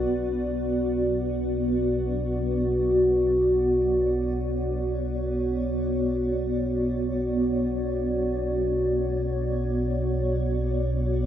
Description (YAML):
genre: dark ambient drone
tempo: free time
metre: none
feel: none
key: B minor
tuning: A4 = 440 Hz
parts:
  - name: granular cloud pad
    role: sustained chords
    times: 0.0-11.3 s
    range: B3 to D5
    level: -24 LUFS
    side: equal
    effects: built-in reverb
  - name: deep rumbling drone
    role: drone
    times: 0.0-11.3 s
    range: B1 to B2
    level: -29 LUFS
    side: equal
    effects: built-in reverb, phaser
room: wet huge ambient reverb, RT60 7.5 s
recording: none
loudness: -23 LUFS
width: side -10 dB against mid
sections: 0.1-11.3 A section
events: none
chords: 0.1 Bm